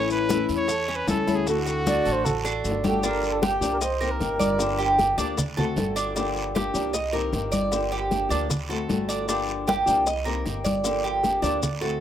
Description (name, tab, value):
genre	latin, Cuban son and guajira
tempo	154 BPM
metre	4/4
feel	straight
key	G minor from 3.0 s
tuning	A4 = 440 Hz
part	clear trumpet	melody	0.0-2.8 s	F#4 to C#5	-28 LUFS	equal	none
part	flamenco guitar	accompaniment	0.0-12.0 s	D3 to G4	-28 LUFS	left 4 dB	none
part	Cuban tres	arpeggios	0.0-12.0 s	C#4 to Eb5	-26 LUFS	right 3 dB	plate reverb
part	upright bass	bass	0.0-12.0 s	G1 to E2	-32 LUFS	equal	none
part	bongos	percussion	0.1-12.0 s	none	-35 LUFS	left 5 dB	none
part	congas	percussion	0.1-12.0 s	none	-28 LUFS	left 2 dB	none
part	maracas	percussion	0.1-12.0 s	none	-34 LUFS	left 5 dB	none
part	guiro	percussion	0.3-12.0 s	none	-39 LUFS	right 4 dB	none
part	breathy mellow concert flute	second line	1.9-4.9 s	G4 to D5	-28 LUFS	right 3 dB	plate reverb
room	moderate small room reverb, RT60 0.5 s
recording	rough home demo mix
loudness	-22 LUFS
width	side -10 dB against mid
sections	0.0-3.0 A section; 3.0-12.0 B section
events	drum fill 2.4-3.0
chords	0.0 A; 1.5 D; 3.0 Gm7; 3.8 Cm7; 4.6 Gm7; 5.4 D7; 6.2 Gm7; 6.9 Cm7; 7.7 Gm7; 8.5 D7; 9.3 Gm7; 10.1 Cm7; 10.8 Gm7